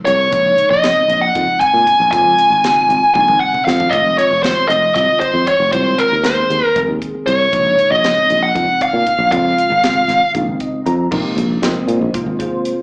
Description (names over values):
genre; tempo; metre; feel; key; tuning
electric jazz fusion; 234 BPM (eighths); 7/8; straight; Bb minor; A4 = 441 Hz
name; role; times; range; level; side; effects
bell-like tine electric piano; accompaniment; 0.0-12.8 s; C3 to Bb5; -25 LUFS; equal; ensemble chorus
bluesy overdriven lead guitar; melody; 0.1-10.3 s; Bb4 to Ab5; -15 LUFS; equal; distortion, slapback echo
sustaining fretless electric bass; bass; 0.1-12.5 s; F1 to Bb2; -22 LUFS; equal; none
crisp fusion drum kit; drums; 0.1-12.8 s; crash cymbal, hi-hat, kick drum, snare drum, toms; -26 LUFS; equal; none
room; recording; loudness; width
light reverb, small room ambience; live gig heard through the venue's PA, club reverb, small speaker sound; -14 LUFS; mono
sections
0.0-11.1 A section; 11.1-12.8 B section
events
drum fill 3.2-3.9; tine electric piano fill 10.3-11.1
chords
0.3 Bbm11; 3.9 Fm7; 7.5 Bbm11; 11.1 Bb9sus4